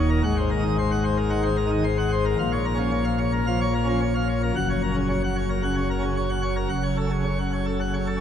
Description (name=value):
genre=classical, organ toccata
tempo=111 BPM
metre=4/4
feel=straight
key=unclear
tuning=A4 = 443 Hz
part: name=pipe organ, plenum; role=solo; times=0.0-8.2 s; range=Eb1 to Gb5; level=-21 LUFS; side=left 1 dB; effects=none
room=wet cathedral reverb, RT60 5.0 s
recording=none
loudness=-21 LUFS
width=side -9 dB against mid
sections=0.0-8.2 A section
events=none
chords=0.2 Ab9; 2.4 Bbm; 4.6 Gb; 6.7 Gbm